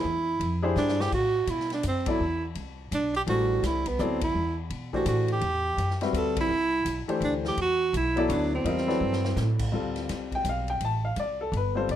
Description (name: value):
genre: modal jazz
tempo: 167 BPM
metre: 3/4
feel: swing 64% on 8ths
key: A dorian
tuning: A4 = 440 Hz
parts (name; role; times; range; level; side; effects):
- warm tenor saxophone; melody; 0.0-9.6 s; B3 to A4; -27 LUFS; right 3 dB; none
- clear upright piano; accompaniment; 0.0-12.0 s; E3 to A5; -29 LUFS; left 4 dB; none
- upright bass; bass; 0.0-12.0 s; G1 to B2; -30 LUFS; equal; none
- swinging big-band drum kit; drums; 0.4-12.0 s; crash cymbal, hi-hat, kick drum, ride cymbal, snare drum; -38 LUFS; left 2 dB; none
room: light reverb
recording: none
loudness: -24 LUFS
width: side -11 dB against mid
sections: 0.0-1.1 A section; 1.1-9.7 B section; 9.7-12.0 C section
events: drum fill 0.8-1.1, 9.0-9.4; band accent 2.0, 4.2, 6.3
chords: 0.0 E7alt; 1.1 Am69; 9.7 Dm7